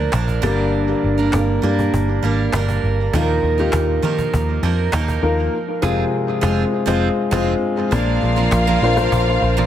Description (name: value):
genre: piano-driven pop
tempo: 100 BPM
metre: 4/4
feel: straight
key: Bb mixolydian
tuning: A4 = 439 Hz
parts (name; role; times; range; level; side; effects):
- dark upright piano; accompaniment; 0.0-9.7 s; G2 to D5; -20 LUFS; left 3 dB; tape echo
- picked steel-string acoustic guitar; riff; 0.0-9.7 s; G2 to Bb4; -23 LUFS; right 7 dB; tape echo
- vintage muted picked electric bass; bass; 0.0-9.7 s; F1 to Eb3; -20 LUFS; equal; none
- cajon; drums; 0.1-9.5 s; none; -26 LUFS; equal; none
- warm studio violin section; second line; 7.9-9.7 s; F4 to F5; -21 LUFS; equal; tape echo
room: light reverb, studio ambience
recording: echo-heavy mix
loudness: -16 LUFS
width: side -11 dB against mid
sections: 0.0-7.9 A section; 7.9-9.7 B section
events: band accent 5.5-7.9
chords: 0.4 Gm; 3.1 Ebsus2; 5.5 Fm; 7.9 Bb